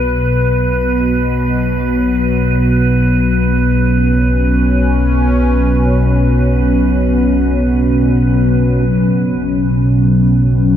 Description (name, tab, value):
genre	dark ambient drone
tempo	free time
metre	none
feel	none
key	unclear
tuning	A4 = 441 Hz
part	sweeping resonant pad	sustained chords	0.0-10.8 s	B2 to C#4	-14 LUFS	equal	chorus
part	analog drone	drone	0.0-10.8 s	B1 to B2	-14 LUFS	equal	chorus
part	icy glass pad	texture	0.0-8.9 s	B4	-21 LUFS	left 1 dB	chorus, built-in reverb
room	wet cathedral reverb, RT60 4.8 s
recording	none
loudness	-11 LUFS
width	side -10 dB against mid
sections	0.0-8.9 A section; 8.9-10.8 B section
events	none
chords	0.0 Bsus2